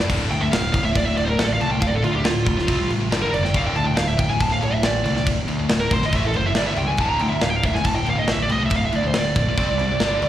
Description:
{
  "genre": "heavy metal",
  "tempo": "139 BPM",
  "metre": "4/4",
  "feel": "straight",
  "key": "D minor",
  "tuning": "A4 = 441 Hz",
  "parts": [
    { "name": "heavy high-gain guitar", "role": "riff", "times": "0.0-10.3 s", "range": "D2 to C4", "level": "-24 LUFS", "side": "left 1 dB", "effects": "distortion, slapback echo" },
    { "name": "tight metal drum kit", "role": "drums", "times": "0.0-10.3 s", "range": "crash cymbal, kick drum, snare drum", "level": "-24 LUFS", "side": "equal", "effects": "none" },
    { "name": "growling picked electric bass", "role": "bass", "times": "0.1-10.3 s", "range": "D1 to D2", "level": "-24 LUFS", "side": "equal", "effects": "overdrive" },
    { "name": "high-gain lead guitar", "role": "melody", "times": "0.3-10.3 s", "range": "F4 to Bb5", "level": "-23 LUFS", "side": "right 2 dB", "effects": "distortion, slapback echo, digital delay" }
  ],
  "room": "little or no reverb",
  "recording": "live gig heard through the venue's PA, recital hall reverb",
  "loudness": "-18 LUFS",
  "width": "side -12 dB against mid",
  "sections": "0.1-10.3 A section",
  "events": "lead electric guitar solo 0.1-10.3",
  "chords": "0.1 Dm; 2.7 C5; 3.1 G5; 3.5 D5; 6.1 A5; 6.6 G5; 7.0 D5; 9.6 C5",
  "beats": "| 0.10 0.53 0.96 1.39 | 1.82 2.25 2.68 3.11 | 3.54 3.98 4.41 4.84 | 5.27 5.70 6.13 6.56 | 6.99 7.42 7.85 8.28 | 8.71 9.14 9.57 10.00"
}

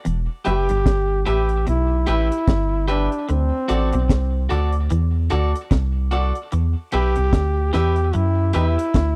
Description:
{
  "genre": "roots reggae",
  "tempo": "74 BPM",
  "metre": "4/4",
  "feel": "swing 59% on 16ths",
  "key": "E minor",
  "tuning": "A4 = 440 Hz",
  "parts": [
    { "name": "clean electric guitar", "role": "riff", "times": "0.0-9.2 s", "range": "E2 to F#3", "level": "-31 LUFS", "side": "equal", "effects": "ensemble chorus" },
    { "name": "soft dub sub bass", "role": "bass", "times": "0.1-9.2 s", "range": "E1 to F#2", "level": "-22 LUFS", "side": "equal", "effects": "none" },
    { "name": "deep reggae drum kit", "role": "drums", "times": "0.1-9.2 s", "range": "hi-hat, kick drum, snare drum", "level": "-21 LUFS", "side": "equal", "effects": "none" },
    { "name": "electric guitar at the edge of break-up", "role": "accompaniment", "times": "0.4-8.8 s", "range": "F#4 to E5", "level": "-32 LUFS", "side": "equal", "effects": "tape echo" },
    { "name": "bright trombone", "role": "melody", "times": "0.5-9.2 s", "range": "C4 to G4", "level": "-25 LUFS", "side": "equal", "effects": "tape echo" },
    { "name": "bright upright piano", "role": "stabs", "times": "0.5-8.8 s", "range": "F#4 to G5", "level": "-31 LUFS", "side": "equal", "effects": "none" }
  ],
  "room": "little or no reverb",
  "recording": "dry, close 1970s-style studio recording",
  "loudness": "-20 LUFS",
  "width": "mono",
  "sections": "0.0-9.2 A section",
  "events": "none",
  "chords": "0.0 Em; 3.3 D; 6.5 Em",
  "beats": "| 0.05 0.86 1.67 2.48 | 3.29 4.09 4.90 5.71 | 6.52 7.33 8.14 8.95"
}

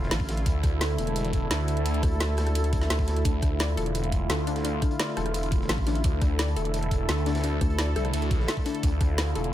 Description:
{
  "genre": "dark technical drum and bass",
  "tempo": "172 BPM",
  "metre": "4/4",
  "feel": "straight",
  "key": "D minor",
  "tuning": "A4 = 441 Hz",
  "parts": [
    { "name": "sweeping resonant pad", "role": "sustained chords", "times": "0.0-9.5 s", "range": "D3 to A4", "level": "-32 LUFS", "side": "right 1 dB", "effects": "chorus, sidechain pumping" },
    { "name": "phased detuned saw bass", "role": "bass", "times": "0.0-9.5 s", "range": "E1 to D2", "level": "-27 LUFS", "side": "equal", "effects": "phaser" },
    { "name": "crunchy breakbeat drum kit", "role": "drums", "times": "0.0-9.4 s", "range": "hi-hat, snare drum", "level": "-44 LUFS", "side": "equal", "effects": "none" },
    { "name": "vowel-sweep wobble bass", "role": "bass", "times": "0.1-3.2, 5.7-7.9 s", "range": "A1 to D2", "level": "-26 LUFS", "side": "equal", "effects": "chorus" },
    { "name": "drum and bass drum kit", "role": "drums", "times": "0.1-9.5 s", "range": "hi-hat, rim click, snare drum", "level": "-31 LUFS", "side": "equal", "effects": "none" },
    { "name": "electronic kick drum", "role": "drums", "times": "0.2-9.1 s", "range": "none", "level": "-26 LUFS", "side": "equal", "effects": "none" },
    { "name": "warbly dusty pluck", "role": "arpeggios", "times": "3.2-9.4 s", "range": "D4 to D5", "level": "-34 LUFS", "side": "left 7 dB", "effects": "chorus, cassette tape, sidechain pumping, tape echo" }
  ],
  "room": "digital ambience",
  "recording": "none",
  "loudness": "-24 LUFS",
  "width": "side -12 dB against mid",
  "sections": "0.0-9.5 A section",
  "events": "none",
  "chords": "0.0 Dmadd9",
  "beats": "0.11 | 0.46 0.81 1.16 1.51 | 1.86 2.21 2.55 2.90 | 3.25 3.60 3.95 4.30 | 4.65 5.00 5.34 5.69 | 6.04 6.39 6.74 7.09 | 7.44 7.79 8.13 8.48 | 8.83 9.18 9.53"
}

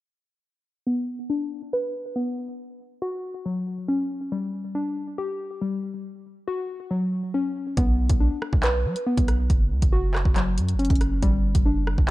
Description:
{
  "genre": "hip hop, drill",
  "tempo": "139 BPM",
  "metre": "4/4",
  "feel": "half-time",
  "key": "B minor",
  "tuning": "A4 = 440 Hz",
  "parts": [
    { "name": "warbly dusty pluck", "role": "arpeggios", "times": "0.9-12.1 s", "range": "F#3 to B4", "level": "-27 LUFS", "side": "left 2 dB", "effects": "chorus, low-pass filter, digital delay" },
    { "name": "hard-hitting 808-style bass", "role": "bass", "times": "7.8-12.1 s", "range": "F#1 to F#3", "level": "-23 LUFS", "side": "equal", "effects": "none" },
    { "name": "drill drum kit", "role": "drums", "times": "7.8-12.1 s", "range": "handclaps, hi-hat, kick drum, rim click", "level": "-23 LUFS", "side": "equal", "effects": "none" }
  ],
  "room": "digital ambience",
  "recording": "dark, warm production",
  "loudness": "-22 LUFS",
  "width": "side -17 dB against mid",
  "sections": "0.9-7.8 A section; 7.8-12.1 B section",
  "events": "filter sweep on synth pluck 0.9-7.8",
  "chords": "0.9 Bm; 2.6 F#5; 4.3 G5; 6.0 F#5; 7.8 Bm; 9.5 F#5; 11.2 G5",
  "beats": "| 0.87 1.30 1.73 2.16 | 2.59 3.02 3.46 3.89 | 4.32 4.75 5.18 5.61 | 6.05 6.48 6.91 7.34 | 7.77 8.20 8.64 9.07 | 9.50 9.93 10.36 10.79 | 11.22 11.66 12.09"
}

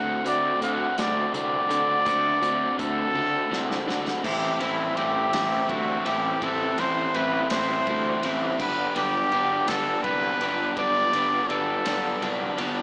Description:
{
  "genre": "indie rock",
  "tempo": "55 BPM (dotted quarters)",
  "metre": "6/8",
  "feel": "straight",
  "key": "A dorian",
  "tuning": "A4 = 439 Hz",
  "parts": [
    { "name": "breathy trumpet", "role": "melody", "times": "0.0-12.6 s", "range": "E4 to F#5", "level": "-25 LUFS", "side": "equal", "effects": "slapback echo" },
    { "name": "overdriven electric guitar", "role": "riff", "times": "0.0-12.8 s", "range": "G2 to F#4", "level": "-28 LUFS", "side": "left 1 dB", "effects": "slapback echo" },
    { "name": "twelve-string electric guitar", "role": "riff", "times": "0.0-12.8 s", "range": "G2 to F#4", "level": "-33 LUFS", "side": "right 1 dB", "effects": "wide subtle chorus, slapback echo" },
    { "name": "fuzz picked electric bass", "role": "bass", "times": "0.0-12.8 s", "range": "G1 to D3", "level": "-31 LUFS", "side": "equal", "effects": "overdrive" },
    { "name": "loose indie drum kit", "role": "drums", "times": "0.3-12.7 s", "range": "crash cymbal, hi-hat, kick drum, ride cymbal, snare drum, toms", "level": "-35 LUFS", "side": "equal", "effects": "none" },
    { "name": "mellow tonewheel organ", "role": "sustained chords", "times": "4.2-12.8 s", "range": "B4 to F#6", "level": "-36 LUFS", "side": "equal", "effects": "none" }
  ],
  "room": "light reverb",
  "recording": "live gig heard through the venue's PA, club reverb, small speaker sound",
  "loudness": "-22 LUFS",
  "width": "side -28 dB against mid",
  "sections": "0.0-4.2 A section; 4.2-12.8 B section",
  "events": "trumpet solo 0.0-4.2; drum fill 3.2-4.2",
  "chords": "0.0 D7; 4.2 Am7; 8.6 Gmaj7",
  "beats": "0.98 | 2.07 3.16 | 4.25 5.33 | 6.42 7.51 | 8.60 9.68 | 10.77 11.85"
}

